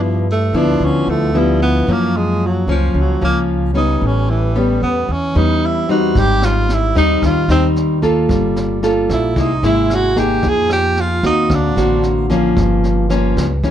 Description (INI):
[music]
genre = bossa nova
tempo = 112 BPM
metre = 4/4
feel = straight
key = unclear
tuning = A4 = 440 Hz
[part]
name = clear tenor saxophone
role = melody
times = 0.0-12.1 s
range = E3 to Ab4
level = -18 LUFS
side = right 2 dB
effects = plate reverb
[part]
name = nylon-string guitar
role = accompaniment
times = 0.0-13.7 s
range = Gb2 to A4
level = -16 LUFS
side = left 2 dB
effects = none
[part]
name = upright bass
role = bass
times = 0.0-13.7 s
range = G1 to G2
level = -18 LUFS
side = equal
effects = none
[part]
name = jazz brush drum kit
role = drums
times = 6.2-13.7 s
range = kick drum, rim click, snare drum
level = -24 LUFS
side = equal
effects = none
[sound]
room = light reverb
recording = dark, warm production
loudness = -13 LUFS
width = side -10 dB against mid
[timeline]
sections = 0.0-13.7 A section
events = tenor saxophone solo 0.0-13.7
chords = 0.0 G6; 1.9 Gbmaj7; 4.0 A9; 6.2 Abmaj7; 8.3 Gm9; 9.4 C7alt; 10.4 Fm7; 11.5 D7b13; 12.6 Gm7b5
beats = 0.27 0.81 1.34 | 1.88 2.41 2.94 3.48 | 4.01 4.55 5.08 5.62 | 6.15 6.69 7.22 7.76 | 8.29 8.82 9.36 9.89 | 10.43 10.96 11.50 12.03 | 12.57 13.10 13.64